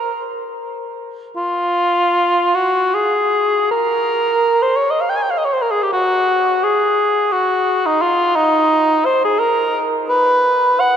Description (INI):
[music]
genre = classical, free, expressive piece for unaccompanied cor anglais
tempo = 46-88 BPM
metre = 3/4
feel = rubato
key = unclear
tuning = A4 = 441 Hz
[part]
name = warm cor anglais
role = solo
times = 0.0-11.0 s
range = Eb4 to Ab5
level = -14 LUFS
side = equal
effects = none
[sound]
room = wet cathedral reverb, RT60 5.9 s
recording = dark, warm production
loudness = -14 LUFS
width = side -8 dB against mid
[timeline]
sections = 0.0-1.4 A section; 1.4-11.0 B section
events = none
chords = none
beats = 0.30 | 1.36 2.15 2.93 | 3.71 4.45 5.21 | 5.93 6.64 7.33 | 8.02 8.72 9.41 | 10.09 10.81